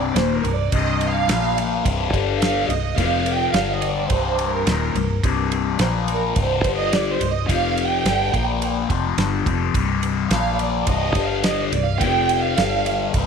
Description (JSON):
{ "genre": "psychedelic rock", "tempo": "106 BPM", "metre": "4/4", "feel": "straight", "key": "C minor", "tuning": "A4 = 439 Hz", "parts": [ { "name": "warm studio string section", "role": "sustained chords", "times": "0.0-13.2 s", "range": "Bb4 to G5", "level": "-24 LUFS", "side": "right 10 dB", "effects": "none" }, { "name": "fuzz guitar", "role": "riff", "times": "0.0-13.3 s", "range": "C2 to Bb3", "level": "-22 LUFS", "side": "left 11 dB", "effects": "distortion, phaser" }, { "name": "fingered electric bass", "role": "bass", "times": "0.0-13.3 s", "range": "C1 to Bb1", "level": "-25 LUFS", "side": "right 2 dB", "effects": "transformer saturation" }, { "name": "damped 70s drum kit", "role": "drums", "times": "0.2-13.3 s", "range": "kick drum, ride cymbal, snare drum", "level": "-25 LUFS", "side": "right 2 dB", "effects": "none" } ], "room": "light reverb, small room ambience", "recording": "1960s-style stereo with parts hard left and right", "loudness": "-18 LUFS", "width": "side -6 dB against mid", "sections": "0.0-13.3 A section", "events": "string section solo 0.0-13.3", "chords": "0.0 Cm; 1.3 Bb5; 1.8 C5; 2.1 G5; 2.7 Cm; 3.0 F5; 3.5 G5; 4.1 Cm; 5.8 Bb5; 6.4 C5; 6.6 G5; 7.2 Cm; 7.5 F5; 8.1 G5; 8.3 Bb5; 8.9 C5; 10.3 Bb5; 10.9 Cm; 11.2 G5; 11.7 C5; 12.0 F5; 12.6 G5", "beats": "0.15 | 0.72 1.28 1.85 2.41 | 2.98 3.54 4.10 4.67 | 5.23 5.80 6.36 6.92 | 7.49 8.05 8.62 9.19 | 9.75 10.31 10.88 11.45 | 12.01 12.58 13.14" }